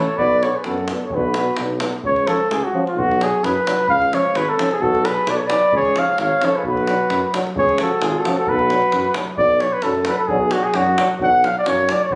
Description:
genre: balkan folk, Balkan brass band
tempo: 131 BPM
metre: 2/4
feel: straight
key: B dorian sharp4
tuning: A4 = 440 Hz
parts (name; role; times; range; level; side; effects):
- mellow flugelhorn; melody; 0.0-12.2 s; E#4 to F#5; -20 LUFS; equal; none
- mellow flugelhorn; second line; 0.0-1.6, 4.8-9.2, 12.1-12.2 s; E#4 to C#5; -27 LUFS; equal; none
- mellow trombone; accompaniment; 0.0-12.2 s; E#3 to B3; -29 LUFS; equal; none
- warm euphonium; accompaniment; 0.0-12.2 s; C#4 to D4; -31 LUFS; equal; none
- warm tuba; bass; 0.2-12.2 s; G#1 to F#2; -26 LUFS; equal; none
- davul; percussion; 0.2-12.2 s; none; -30 LUFS; equal; none
room: moderate studio reverb, RT60 0.6 s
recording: recorded on a phone in the room, studio reverb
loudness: -18 LUFS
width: mono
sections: 0.0-2.0 A section; 2.0-9.4 B section; 9.4-12.2 A section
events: none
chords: 0.2 Bm; 2.0 C#; 3.0 Bm; 3.9 C#; 4.8 Bm; 5.7 C#; 6.6 Bm; 7.6 C#; 8.5 Bm

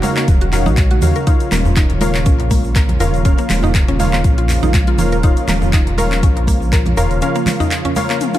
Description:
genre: afro house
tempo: 121 BPM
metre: 4/4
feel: swing 55% on 16ths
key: unclear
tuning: A4 = 440 Hz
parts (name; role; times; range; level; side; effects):
- warm analog pad; sustained chords; 0.0-8.4 s; Db3 to F4; -23 LUFS; right 3 dB; lush chorus, sidechain pumping
- warm analog keys; stabs; 0.0-8.4 s; F4 to F5; -22 LUFS; left 2 dB; chorus, sidechain pumping, digital delay
- deep house drum kit; drums; 0.0-8.4 s; handclaps, hi-hat, toms; -24 LUFS; left 2 dB; none
- congas; percussion; 0.0-8.1 s; none; -23 LUFS; right 2 dB; none
- djembe; percussion; 0.0-8.1 s; none; -23 LUFS; left 1 dB; none
- egg shaker; percussion; 0.0-8.4 s; none; -34 LUFS; right 4 dB; none
- mallet-like synth pluck; arpeggios; 0.2-8.4 s; Bb3 to Bb4; -24 LUFS; equal; chorus, sidechain pumping, digital delay
- dark detuned saw bass; bass; 0.3-7.2 s; Eb1 to Eb2; -18 LUFS; equal; sidechain pumping
- electronic kick drum; drums; 0.3-6.8 s; none; -14 LUFS; equal; none
room: digital ambience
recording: dark, warm production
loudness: -12 LUFS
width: side -13 dB against mid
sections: 0.0-8.4 A section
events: drum fill 8.2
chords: 0.0 Ebm7; 1.3 Bbm/Eb

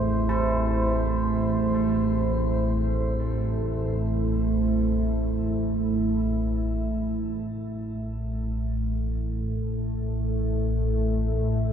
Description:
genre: dark ambient drone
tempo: free time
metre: none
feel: none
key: A harmonic minor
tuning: A4 = 440 Hz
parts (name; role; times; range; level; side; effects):
- deep dark ambient pad; sustained chords; 0.0-11.7 s; A3 to C5; -26 LUFS; right 2 dB; chorus, built-in reverb, shimmer reverb
- old church bells; arpeggios; 0.0-6.1 s; E3 to E4; -35 LUFS; left 1 dB; tape echo, shimmer reverb
- deep rumbling drone; drone; 0.0-11.7 s; A1 to A2; -27 LUFS; equal; built-in reverb, phaser, wide subtle chorus
- bronze singing bowl; texture; 0.0-6.8 s; none; barely audible; none; none
room: wet cathedral reverb, RT60 4.7 s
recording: in a vast, echoing space, lossy compression artefacts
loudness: -24 LUFS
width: side -8 dB against mid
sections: 0.0-6.8 A section; 6.8-11.7 B section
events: none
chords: 0.0 Am; 6.8 Asus2

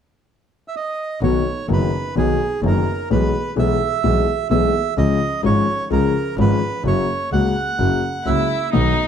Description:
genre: tango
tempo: 128 BPM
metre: 4/4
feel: rubato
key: B major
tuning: A4 = 440 Hz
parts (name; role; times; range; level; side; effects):
- bandoneon; melody; 0.7-9.1 s; G#4 to F#5; -23 LUFS; right 6 dB; none
- warm concert grand piano; accompaniment; 1.2-8.9 s; F#1 to G#4; -20 LUFS; left 4 dB; none
- clear double bass; bass; 1.2-8.9 s; F#1 to C#2; -21 LUFS; right 2 dB; none
- rich violin; second line; 8.3-9.1 s; D#4 to E4; -23 LUFS; left 2 dB; none
room: wet large studio reverb, RT60 1.3 s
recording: dark, warm production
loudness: -17 LUFS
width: side -8 dB against mid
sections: 0.0-1.2 A section; 1.2-9.1 B section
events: none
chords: 0.0 N.C.; 1.2 B; 3.1 E/B; 5.0 C#; 6.9 F#

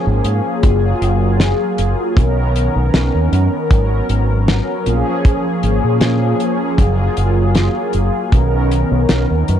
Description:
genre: vaporwave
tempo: 78 BPM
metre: 4/4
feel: straight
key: F# major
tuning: A4 = 440 Hz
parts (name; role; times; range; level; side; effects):
- mellow synth brass; accompaniment; 0.0-9.6 s; D#3 to A#4; -17 LUFS; equal; wide subtle chorus, tape echo
- fingered electric bass with an envelope filter; bass; 0.1-9.6 s; F#1 to A#2; -16 LUFS; equal; tube saturation
- damped 70s drum kit; drums; 0.2-9.6 s; hi-hat, snare drum; -19 LUFS; left 1 dB; small room ambience
- kick drum; drums; 0.6-8.5 s; none; -11 LUFS; equal; small room ambience
room: studio reverb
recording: dark, warm production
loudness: -13 LUFS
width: side -10 dB against mid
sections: 0.0-9.6 A section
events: none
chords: 0.0 A#m7; 0.6 F#maj9; 2.2 Bmaj9; 3.7 G#m11; 4.9 A#m7; 6.8 F#maj9; 8.3 Bmaj9

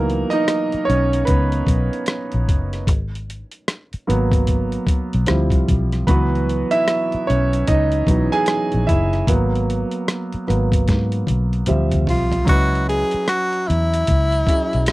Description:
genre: R&B, neo-soul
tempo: 75 BPM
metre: 4/4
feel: swing 62% on 16ths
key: C# dorian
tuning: A4 = 440 Hz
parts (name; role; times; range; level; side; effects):
- clear concert grand piano; accompaniment; 0.0-14.9 s; E3 to G#5; -20 LUFS; right 2 dB; none
- vintage muted fingered electric bass; bass; 0.0-14.9 s; F#1 to G#2; -20 LUFS; equal; none
- boom bap sampler-style drum kit; drums; 0.1-14.9 s; hi-hat, kick drum, rim click, snare drum, toms; -20 LUFS; equal; none
- breathy tenor saxophone; melody; 12.1-14.9 s; E4 to G#4; -20 LUFS; equal; none
room: little or no reverb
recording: dry, close 1970s-style studio recording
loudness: -16 LUFS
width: side -19 dB against mid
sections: 0.0-12.5 A section; 12.5-14.9 B section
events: grand piano solo 0.0-12.5; drum fill 10.9-12.5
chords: 0.0 C#m11; 2.9 G#m7; 5.3 Dm11; 6.1 C#m11; 9.3 G#m7; 11.7 Dm11; 12.5 C#m11

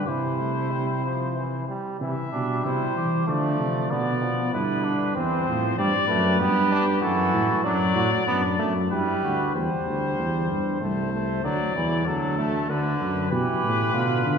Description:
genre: classical, imitative canzona for brass ensemble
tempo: 95 BPM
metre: 3/4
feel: straight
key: C major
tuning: A4 = 439 Hz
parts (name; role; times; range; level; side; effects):
- warm trumpet; melody; 0.0-14.4 s; G4 to E5; -29 LUFS; left 5 dB; none
- clear flugelhorn; second line; 0.0-9.6, 13.3-14.4 s; A3 to B4; -28 LUFS; right 4 dB; none
- brilliant trombone; accompaniment; 0.0-14.4 s; D3 to D4; -29 LUFS; right 1 dB; none
- mellow tuba; bass; 0.0-14.4 s; C2 to E3; -26 LUFS; equal; none
room: wet concert hall reverb, RT60 2.4 s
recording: heard from further back in the room, nothing above 8.0 kHz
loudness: -22 LUFS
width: side -6 dB against mid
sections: 0.0-2.0 A section; 2.0-9.6 B section; 9.6-14.4 A section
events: none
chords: 0.1 C; 3.3 F6; 3.9 G/B; 5.2 C/E; 5.8 G; 7.0 F#m7; 7.7 D/F#; 8.9 G; 9.6 C; 10.8 Am/C; 11.4 D; 12.7 Bm/D; 13.3 Bdim

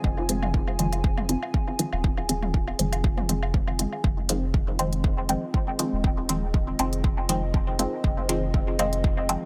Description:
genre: dub techno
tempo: 120 BPM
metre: 4/4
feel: swing 54% on 16ths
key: F minor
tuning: A4 = 440 Hz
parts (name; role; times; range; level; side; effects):
- dark analog pad; sustained chords; 0.0-9.5 s; C4 to Ab5; -37 LUFS; equal; chorus, phaser, sidechain pumping
- filtered dub chord stab; stabs; 0.0-9.4 s; Eb3 to C4; -31 LUFS; equal; phaser, sidechain pumping, dub echo
- soft dub sub bass; bass; 0.0-9.4 s; Eb1 to F1; -32 LUFS; equal; sidechain pumping
- electronic kick drum; drums; 0.0-9.1 s; none; -27 LUFS; equal; none
- electronic woodblock and toms; percussion; 0.2-4.0 s; none; -37 LUFS; equal; overdrive, sidechain pumping on perc, sidechain pumping on toms, dub echo
- electronic hi-hat; drums; 0.3-9.4 s; none; -29 LUFS; equal; none
room: digital ambience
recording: none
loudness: -25 LUFS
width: mono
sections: 0.0-4.0 A section; 4.0-9.5 A section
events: filter sweep on synth stab 0.0-4.0, 4.0-9.5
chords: 0.0 Fm7

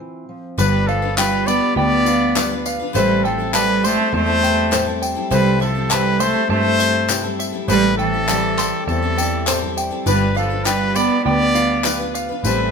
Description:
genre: indie folk with a building arrangement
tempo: 101 BPM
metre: 4/4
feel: straight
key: unclear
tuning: A4 = 440 Hz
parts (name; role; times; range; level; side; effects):
- fingerpicked steel-string acoustic guitar; accompaniment; 0.0-0.6 s; E3 to C5; -35 LUFS; right 2 dB; none
- warm trumpet; melody; 0.6-12.7 s; A4 to D5; -21 LUFS; left 2 dB; none
- rich cello; second line; 0.6-12.7 s; E3 to B3; -21 LUFS; right 4 dB; none
- picked twelve-string acoustic guitar; accompaniment; 0.6-12.7 s; A2 to B4; -26 LUFS; left 5 dB; none
- warm upright piano; accompaniment; 0.6-12.7 s; G1 to D5; -28 LUFS; left 6 dB; none
- open-back banjo; arpeggios; 0.6-12.4 s; B4 to C6; -24 LUFS; right 3 dB; none
- picked electric bass; bass; 0.6-12.7 s; G1 to G2; -23 LUFS; equal; none
- tambourine; percussion; 0.6-12.6 s; none; -27 LUFS; left 7 dB; none
- group handclap; percussion; 1.2-12.0 s; none; -24 LUFS; left 3 dB; none
room: moderate stone room reverb, RT60 1.1 s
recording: band playing live in one room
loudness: -15 LUFS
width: side -6 dB against mid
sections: 0.6-12.7 A section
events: break 0.0-0.6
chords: 0.0 Dm7 (rootless); 0.6 G7; 3.0 Am7; 5.3 C6; 7.7 Am7; 10.1 G7

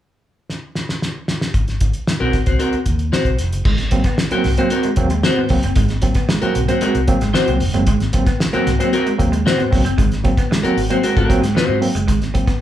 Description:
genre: funk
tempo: 114 BPM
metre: 4/4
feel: straight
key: Ab mixolydian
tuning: A4 = 439 Hz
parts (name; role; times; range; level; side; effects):
- cloth-damped thuddy drum kit; drums; 0.5-12.6 s; crash cymbal, hi-hat, kick drum, snare drum; -19 LUFS; equal; none
- vintage muted fingered electric bass; bass; 1.5-12.5 s; F1 to Ab2; -22 LUFS; equal; none
- clean electric guitar; accompaniment; 2.2-11.8 s; C4 to C5; -19 LUFS; left 1 dB; none
- tine electric piano; stabs; 3.6-12.4 s; Ab2 to C4; -22 LUFS; right 2 dB; medium tremolo
- electric guitar at the edge of break-up; riff; 3.7-12.6 s; Gb3 to C4; -25 LUFS; right 1 dB; spring reverb
room: moderate large studio reverb, RT60 0.8 s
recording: band playing live in one room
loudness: -15 LUFS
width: side -12 dB against mid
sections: 0.0-1.5 A section; 1.5-3.7 B section; 3.7-12.6 C section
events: drum fill 0.5-1.5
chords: 0.0 N.C.; 1.5 Ab9

